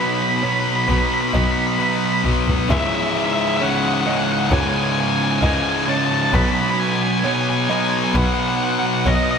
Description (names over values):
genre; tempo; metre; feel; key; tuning
rock; 66 BPM; 4/4; straight; C# minor; A4 = 440 Hz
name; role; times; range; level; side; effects
octave-fuzz lead guitar; melody; 0.0-9.4 s; D#5 to B5; -22 LUFS; right 1 dB; distortion, diffuse ambient delay
pedal steel guitar; sustained chords; 0.0-9.4 s; E3 to D#5; -32 LUFS; left 2 dB; none
felt-muted upright piano; arpeggios; 0.0-9.4 s; B4 to E5; -29 LUFS; right 2 dB; diffuse ambient delay
thick fuzz guitar; riff; 0.0-9.4 s; C#2 to B3; -23 LUFS; right 6 dB; distortion
tight distorted guitar; riff; 0.0-9.4 s; C#2 to B3; -22 LUFS; left 8 dB; distortion
clear double bass; bass; 0.9-9.1 s; B1 to C#2; -20 LUFS; equal; none
room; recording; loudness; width
wet lush hall reverb, RT60 2.7 s; dreamy mix soaked in reverb; -16 LUFS; side -6 dB against mid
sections
0.0-2.7 A section; 2.7-9.4 B section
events
build-up 0.0-2.7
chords
0.0 B; 2.7 C#madd9; 6.3 Badd9